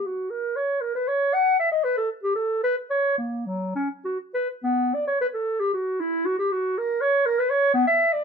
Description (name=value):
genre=classical, baroque-style fantasia for unaccompanied clarinet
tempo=98-124 BPM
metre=3/4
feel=rubato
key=unclear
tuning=A4 = 445 Hz
part: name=dark clarinet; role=solo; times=0.0-8.2 s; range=F#3 to F#5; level=-21 LUFS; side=equal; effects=none
room=light reverb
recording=minimal, uncompressed stereo recording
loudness=-22 LUFS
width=side -6 dB against mid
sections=0.0-8.2 A section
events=none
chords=none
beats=0.32 0.82 | 1.34 1.85 2.37 | 2.91 3.48 4.04 | 4.65 5.21 5.75 | 6.26 6.77 7.26 | 7.75